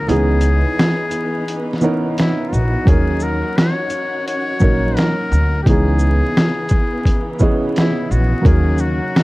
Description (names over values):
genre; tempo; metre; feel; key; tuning
lo-fi hip hop; 86 BPM; 4/4; swing 65% on 16ths; C# dorian; A4 = 439 Hz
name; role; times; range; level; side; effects
trumpet with metal mute; melody; 0.0-9.2 s; E4 to C#5; -23 LUFS; left 3 dB; none
felt-muted upright piano; accompaniment; 0.0-9.2 s; E3 to D#5; -21 LUFS; right 2 dB; none
warm studio string section; sustained chords; 0.0-9.2 s; C#3 to F#4; -26 LUFS; equal; none
upright bass; bass; 0.0-9.0 s; A#1 to D#2; -16 LUFS; equal; none
dusty soul sampler-style drum kit; drums; 0.1-9.2 s; finger snaps, hi-hat, kick drum, shaker, snare drum; -16 LUFS; equal; overdrive
room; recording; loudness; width
light reverb; dark, warm production, vinyl crackle; -14 LUFS; side -20 dB against mid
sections
0.0-9.2 A section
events
break 0.1-2.9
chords
0.1 C#m9; 2.9 D#m7; 5.7 C#m9; 8.5 D#m7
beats
| 0.08 0.78 1.48 2.17 | 2.87 3.57 4.27 4.96 | 5.66 6.36 7.06 7.75 | 8.45 9.15